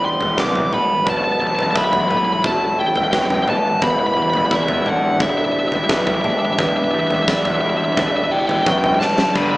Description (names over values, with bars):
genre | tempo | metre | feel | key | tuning
post-rock | 87 BPM | 4/4 | straight | E minor | A4 = 438 Hz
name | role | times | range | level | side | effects
fuzz lead guitar | melody | 0.0-9.6 s | E5 to D6 | -19 LUFS | equal | distortion
rich chamber string section | sustained chords | 0.0-9.6 s | E3 to D5 | -29 LUFS | equal | none
electric guitar through a small old amp | arpeggios | 0.0-9.6 s | B4 to E5 | -27 LUFS | right 1 dB | none
twelve-string electric guitar | arpeggios | 0.0-9.6 s | E2 to E4 | -26 LUFS | left 1 dB | spring reverb, slapback echo
huge arena drum kit | drums | 0.2-9.5 s | kick drum, snare drum, toms | -20 LUFS | equal | none
fuzz picked electric bass | bass | 0.4-9.6 s | B1 to G2 | -25 LUFS | equal | overdrive
distorted electric guitar | riff | 9.4-9.6 s | G2 to G3 | -19 LUFS | left 2 dB | distortion
room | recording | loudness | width
wet large studio reverb, RT60 1.1 s | band playing live in one room, small speaker sound | -15 LUFS | side -19 dB against mid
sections
0.0-9.4 A section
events
drum fill 9.0-9.4, 9.4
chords
0.0 G6; 1.1 B7sus4; 3.8 Em7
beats
0.38 | 1.07 1.76 2.45 3.13 | 3.82 4.51 5.20 5.89 | 6.58 7.28 7.97 8.66 | 9.35